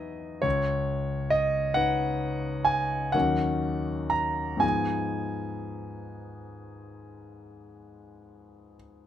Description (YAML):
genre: classical, impressionist solo piano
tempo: 38-46 BPM (dotted quarters)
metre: 9/8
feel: rubato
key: G# minor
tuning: A4 = 439 Hz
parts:
  - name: clear grand piano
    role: solo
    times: 0.0-9.1 s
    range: C#2 to A#5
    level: -26 LUFS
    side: equal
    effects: none
room: light reverb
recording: close, detailed microphones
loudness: -25 LUFS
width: side -10 dB against mid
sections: 0.0-9.1 A section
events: none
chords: 0.4 C#sus2; 3.1 D#m7; 4.6 G#m6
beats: | 0.45 1.77 3.14 | 4.62 6.16 7.71